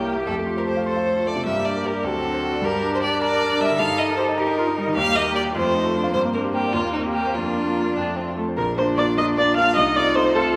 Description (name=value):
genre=quick classical-period movement for piano quartet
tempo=102 BPM (dotted quarters)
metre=6/8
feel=straight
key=Bb major from 3.8 s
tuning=A4 = 440 Hz
part: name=rich violin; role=melody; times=0.0-10.6 s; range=Eb4 to F5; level=-27 LUFS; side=equal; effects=none
part: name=rich cello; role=second line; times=0.0-10.6 s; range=Bb3 to Bb4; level=-30 LUFS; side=equal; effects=none
part: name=bright concert grand piano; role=accompaniment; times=0.0-10.6 s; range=Bb1 to C6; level=-27 LUFS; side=equal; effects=none
part: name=warm viola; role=accompaniment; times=0.0-10.6 s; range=A3 to F5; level=-27 LUFS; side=equal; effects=none
room=moderate scoring stage reverb, RT60 1.8 s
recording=none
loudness=-21 LUFS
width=mono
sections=0.0-8.6 A section; 8.6-10.6 B section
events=none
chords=0.3 F; 1.5 Gm; 2.0 D7; 2.6 Gm; 3.8 Eb/G; 5.0 Eb; 5.6 F; 6.1 Gm; 6.7 Cm7/Eb; 7.4 Bb/F; 8.0 F; 8.6 Bb; 9.8 F7/C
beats=| 0.28 0.87 | 1.46 2.05 | 2.63 3.22 | 3.80 4.38 | 4.96 5.55 | 6.14 6.74 | 7.35 7.96 | 8.58 9.18 | 9.77 10.36